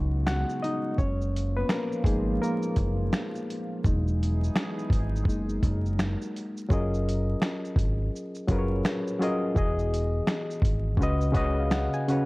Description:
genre	lo-fi hip hop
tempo	84 BPM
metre	4/4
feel	swing 63% on 16ths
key	F# major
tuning	A4 = 440 Hz
part	barky reed electric piano	accompaniment	0.0-12.3 s	C#3 to G#5	-29 LUFS	left 1 dB	cassette tape, low-pass filter
part	warbly tape-like pad	sustained chords	0.0-6.7 s	C#3 to A#4	-36 LUFS	right 2 dB	chorus, built-in reverb, low-pass filter
part	deep dub picked electric bass	bass	0.0-11.9 s	E1 to C#2	-28 LUFS	equal	none
part	dusty soul sampler-style drum kit	drums	0.3-12.3 s	finger snaps, hi-hat, kick drum, shaker, snare drum	-28 LUFS	equal	none
room	light reverb, digital ambience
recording	dark, warm production, vinyl crackle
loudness	-25 LUFS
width	side -22 dB against mid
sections	0.0-6.7 A section; 6.7-12.3 A section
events	reed electric piano solo 0.0-6.7; reed electric piano fill 11.0-12.3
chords	0.0 C#7sus4; 1.0 F#maj13; 3.8 Emaj7; 5.3 F#69; 6.7 F#maj13; 9.6 Emaj7; 11.0 C#7sus4

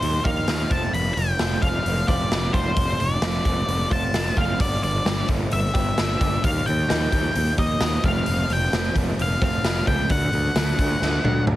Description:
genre	quiet-loud alternative rock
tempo	131 BPM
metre	4/4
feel	straight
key	unclear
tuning	A4 = 439 Hz
part	octave-fuzz lead guitar	melody	0.0-11.4 s	C5 to B5	-26 LUFS	left 1 dB	distortion
part	twelve-string electric guitar	arpeggios	0.0-11.5 s	C3 to G4	-31 LUFS	right 1 dB	digital delay
part	fuzz picked electric bass	bass	0.0-11.6 s	F1 to Eb2	-24 LUFS	equal	overdrive
part	raw garage drum kit	drums	0.0-11.6 s	hi-hat, kick drum, snare drum, toms	-24 LUFS	equal	none
room	small room ambience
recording	heavily compressed radio sound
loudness	-20 LUFS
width	side -15 dB against mid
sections	0.0-11.6 A section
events	drum fill 11.0-11.6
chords	0.0 Ebadd9; 0.7 F; 4.6 G; 6.4 Ebadd9; 8.0 F; 10.1 D

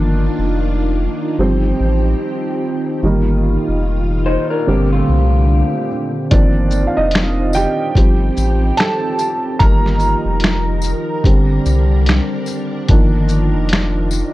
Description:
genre	lo-fi hip hop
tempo	73 BPM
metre	4/4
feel	swing 58% on 16ths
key	unclear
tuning	A4 = 440 Hz
part	dark upright piano	accompaniment	0.0-14.3 s	D3 to Bb5	-18 LUFS	right 2 dB	cassette tape, low-pass filter
part	ensemble organ-string	sustained chords	0.0-14.3 s	Bb2 to Bb4	-23 LUFS	left 1 dB	ensemble chorus, low-pass filter
part	round analog bass	bass	0.0-14.2 s	F1 to C2	-16 LUFS	equal	none
part	electric guitar through a small old amp	second line	4.3-6.1 s	A3 to C5	-21 LUFS	left 2 dB	phaser, low-pass filter, analog delay
part	lo-fi sampler-style drum kit	drums	6.3-14.3 s	finger snaps, hi-hat, kick drum, shaker, snare drum	-14 LUFS	equal	vintage 12-bit sampler grit
part	tambourine	percussion	6.7-14.3 s	none	-32 LUFS	left 8 dB	none
room	light reverb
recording	dark, warm production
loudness	-13 LUFS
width	side -17 dB against mid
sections	0.0-14.3 A section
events	upright piano solo 0.0-14.3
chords	0.0 F13sus4; 1.4 Eb6/G; 3.0 F7sus4; 4.7 Bb6/G; 6.3 Cm11; 8.0 Eb6/G; 9.6 F7sus4; 11.2 Bb6/G; 12.9 F13sus4

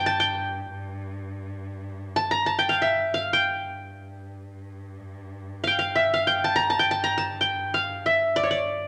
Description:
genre	Turkish makam ensemble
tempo	free time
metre	none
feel	none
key	G makam nikriz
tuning	A4 = 440 Hz
part	qanun	melody	0.0-8.9 s	C#5 to Bb5	-24 LUFS	equal	none
part	rich cello	drone	0.0-8.9 s	G2	-40 LUFS	equal	none
room	moderate large studio reverb, RT60 1.4 s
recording	none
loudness	-24 LUFS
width	mono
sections	0.0-8.9 A section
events	none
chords	none

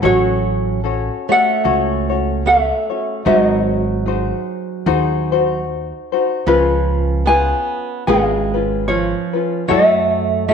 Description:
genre	Hawaiian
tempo	75 BPM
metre	4/4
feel	swing 57% on 8ths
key	F# minor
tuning	A4 = 437 Hz
part	fingerpicked plugged-in swing-style acoustic guitar	second line	0.0-10.5 s	E#3 to B3	-22 LUFS	right 10 dB	none
part	tenor ukulele	accompaniment	0.0-10.5 s	C#4 to C#5	-20 LUFS	left 8 dB	none
part	upright bass	bass	0.0-10.5 s	G#1 to F#2	-20 LUFS	right 1 dB	none
part	ukulele	melody	0.1-10.5 s	E#4 to G#5	-17 LUFS	equal	none
room	wet echo chamber reverb, RT60 1.5 s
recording	1960s-style stereo with parts hard left and right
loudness	-14 LUFS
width	side -6 dB against mid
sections	0.0-10.5 A section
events	none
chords	0.0 F#m/A; 3.3 G#7; 6.5 C#7; 9.7 F#m7

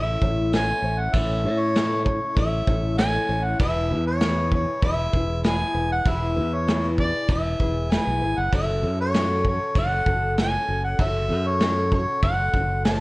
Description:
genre	folk rock and heartland rock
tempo	98 BPM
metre	4/4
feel	straight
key	A major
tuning	A4 = 439 Hz
part	mellow harmonica	melody	0.0-13.0 s	C#5 to A5	-25 LUFS	equal	slapback echo
part	picked twelve-string acoustic guitar	accompaniment	0.0-13.0 s	A2 to C#5	-29 LUFS	left 2 dB	none
part	fingered electric bass	bass	0.0-13.0 s	E1 to A2	-26 LUFS	equal	none
part	soft brush drum kit	drums	0.2-13.0 s	crash cymbal, kick drum, snare drum	-25 LUFS	equal	none
room	small room ambience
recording	worn, warbling old tape, cassette tape, warbly pitch drift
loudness	-20 LUFS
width	side -22 dB against mid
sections	0.0-13.0 A section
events	none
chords	0.0 A; 3.6 E; 8.5 F#m

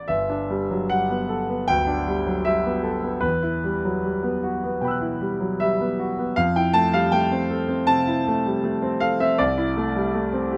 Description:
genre	classical, impressionist solo piano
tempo	77 BPM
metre	4/4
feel	uneven beats, rubato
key	G major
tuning	A4 = 440 Hz
part	clear concert grand piano	solo	0.0-10.6 s	G1 to F#6	-23 LUFS	equal	none
room	light reverb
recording	close, detailed microphones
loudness	-23 LUFS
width	mono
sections	0.1-10.6 A section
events	none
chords	0.1 G69; 3.2 Emadd9; 6.4 Fmaj7; 9.4 C69

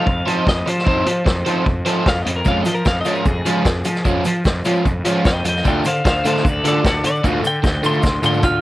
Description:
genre	indie rock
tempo	151 BPM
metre	4/4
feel	straight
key	unclear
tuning	A4 = 443 Hz
part	twelve-string electric guitar	melody	0.0-8.6 s	F4 to C6	-22 LUFS	left 1 dB	none
part	crunchy overdriven guitar	riff	0.0-8.5 s	D3 to C5	-21 LUFS	right 1 dB	none
part	fuzz picked electric bass	bass	0.0-8.6 s	D2 to F3	-21 LUFS	equal	overdrive
part	vintage drum kit	drums	0.1-8.5 s	hi-hat, kick drum, snare drum, toms	-20 LUFS	equal	none
part	egg shaker	percussion	2.4-8.5 s	none	-40 LUFS	right 4 dB	none
part	glockenspiel with hard plastic mallets	second line	8.4-8.6 s	F6	-19 LUFS	right 4 dB	none
room	little or no reverb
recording	worn, warbling old tape, cassette tape, warbly pitch drift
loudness	-15 LUFS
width	side -16 dB against mid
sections	0.0-8.6 A section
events	clean electric guitar solo 0.0-8.6; drum fill 7.2-8.6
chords	0.0 F7; 2.3 Db/F; 5.6 Dm7

